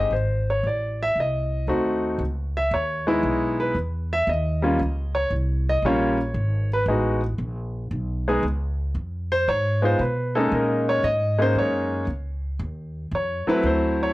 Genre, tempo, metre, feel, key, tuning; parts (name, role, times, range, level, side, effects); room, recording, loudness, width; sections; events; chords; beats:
jazz piano trio; 115 BPM; 4/4; swing 68% on 8ths; C# minor; A4 = 440 Hz
clear grand piano; melody; 0.0-14.1 s; F#3 to E5; -22 LUFS; equal; cassette tape
upright bass; bass; 0.0-14.1 s; G1 to B2; -26 LUFS; equal; tube saturation
light reverb, studio ambience; home recording on cassette; -21 LUFS; side -18 dB against mid
0.0-2.2 A section; 2.2-14.1 B section
0.1 Ab7b9; 2.2 C#m9; 4.3 D#7; 6.4 G#m; 8.4 C#7; 10.5 F#69; 12.6 D#sus2
| 0.12 0.64 1.16 1.68 | 2.20 2.72 3.24 3.76 | 4.28 4.80 5.32 5.84 | 6.36 6.88 7.39 7.92 | 8.44 8.96 9.48 10.00 | 10.52 11.04 11.56 12.08 | 12.60 13.12 13.64